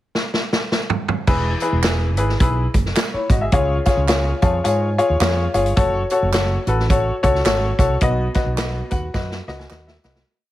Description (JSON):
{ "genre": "uptempo 1960s-style soul", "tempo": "107 BPM", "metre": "4/4", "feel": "swing 60% on 8ths", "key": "E major", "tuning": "A4 = 439 Hz", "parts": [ { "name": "swinging big-band drum kit", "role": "drums", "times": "0.1-10.3 s", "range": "crash cymbal, hi-hat, kick drum, snare drum, toms", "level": "-20 LUFS", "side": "right 1 dB", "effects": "none" }, { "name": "bright upright piano", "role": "accompaniment", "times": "1.3-10.2 s", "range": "B2 to B5", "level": "-20 LUFS", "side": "left 2 dB", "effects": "none" }, { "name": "woody fretless electric bass", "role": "bass", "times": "1.3-10.2 s", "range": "E1 to G#2", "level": "-21 LUFS", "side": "right 1 dB", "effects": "none" }, { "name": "tambourine and handclaps", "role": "percussion", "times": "1.3-10.1 s", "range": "none", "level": "-31 LUFS", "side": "right 7 dB", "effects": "none" } ], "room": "little or no reverb", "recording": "heavily compressed radio sound", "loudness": "-16 LUFS", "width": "side -14 dB against mid", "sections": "0.0-1.3 pickup bar; 1.3-10.3 verse", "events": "drum fill 0.1-1.3, 9.1-10.3; upright piano fill 4.1-5.8, 9.1-10.3; fade-out 8.0-10.3", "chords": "0.0 N.C.; 1.3 E; 3.5 C#; 5.8 F#m; 8.0 B" }